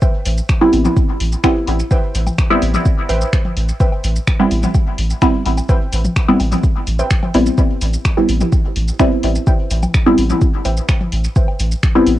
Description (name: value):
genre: dub techno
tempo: 127 BPM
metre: 4/4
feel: straight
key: A minor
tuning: A4 = 441 Hz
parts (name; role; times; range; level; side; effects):
- warbly dusty pluck; riff; 0.0-11.6 s; B4 to G5; -26 LUFS; right 1 dB; chorus, sidechain pumping, cassette tape, dub echo
- deep house drum kit; drums; 0.0-12.2 s; finger snaps, hi-hat, shaker; -25 LUFS; equal; overdrive, cassette tape, dub echo
- electronic kick drum; drums; 0.0-11.9 s; none; -15 LUFS; equal; overdrive, cassette tape
- warm sub bass; bass; 0.3-12.2 s; A1; -18 LUFS; equal; sidechain pumping
- filtered dub chord stab; stabs; 0.6-12.2 s; G3 to E4; -16 LUFS; equal; phaser, vintage 12-bit sampler grit, sidechain pumping, cassette tape, dub echo
- electronic woodblock and toms; percussion; 0.6-11.6 s; none; -26 LUFS; left 1 dB; sidechain pumping on perc, cassette tape, sidechain pumping on toms, dub echo
room: light reverb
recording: home recording on cassette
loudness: -13 LUFS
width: side -14 dB against mid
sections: 0.0-12.2 A section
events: none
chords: 0.0 Am7